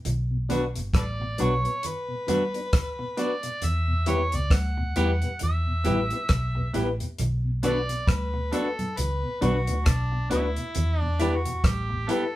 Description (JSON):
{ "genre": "roots reggae", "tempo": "67 BPM", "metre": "4/4", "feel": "swing 58% on 16ths", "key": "B minor", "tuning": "A4 = 440 Hz", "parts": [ { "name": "vintage muted fingered electric bass", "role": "bass", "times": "0.1-12.1 s", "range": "G1 to E2", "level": "-26 LUFS", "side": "equal", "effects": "none" }, { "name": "damped 70s drum kit", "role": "drums", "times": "0.1-12.3 s", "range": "hi-hat, kick drum, rim click", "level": "-26 LUFS", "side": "equal", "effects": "none" }, { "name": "congas", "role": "percussion", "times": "0.1-11.9 s", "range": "none", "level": "-34 LUFS", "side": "right 2 dB", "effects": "none" }, { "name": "mellow tonewheel organ", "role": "accompaniment", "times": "0.3-12.2 s", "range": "E2 to E4", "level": "-35 LUFS", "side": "left 2 dB", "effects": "chorus vibrato, slow rotary speaker" }, { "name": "semi-hollow electric guitar", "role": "accompaniment", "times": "0.5-12.2 s", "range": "B3 to G4", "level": "-30 LUFS", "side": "right 3 dB", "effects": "none" }, { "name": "reed electric piano", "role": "stabs", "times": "0.5-12.3 s", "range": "D4 to B4", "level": "-29 LUFS", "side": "left 4 dB", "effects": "fast tremolo" }, { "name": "overdriven harmonica", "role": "melody", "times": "1.0-12.4 s", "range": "D4 to F#5", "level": "-31 LUFS", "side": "right 1 dB", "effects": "none" } ], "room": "moderate studio reverb, RT60 0.6 s", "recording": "band playing live in one room", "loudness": "-23 LUFS", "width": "side -15 dB against mid", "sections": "0.0-7.2 A section; 7.2-12.4 B section", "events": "harmonica solo 7.2-12.4", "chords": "0.0 Bm; 3.6 Em; 7.2 Bm; 10.8 Em" }